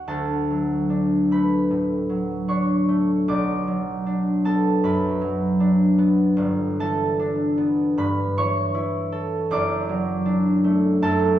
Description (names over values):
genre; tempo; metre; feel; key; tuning
classical, solo harp piece; 76 BPM; 4/4; uneven beats, rubato; D major; A4 = 441 Hz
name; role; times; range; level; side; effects
concert harp; solo; 0.0-11.4 s; F#1 to D6; -19 LUFS; equal; none
room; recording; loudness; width
wet recital hall reverb, RT60 1.8 s; recorded in a church or concert hall; -19 LUFS; side -12 dB against mid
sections
0.1-11.4 A section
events
none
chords
0.1 D; 3.3 Bm; 6.4 Em7/G; 8.0 A7/G; 9.5 D/F#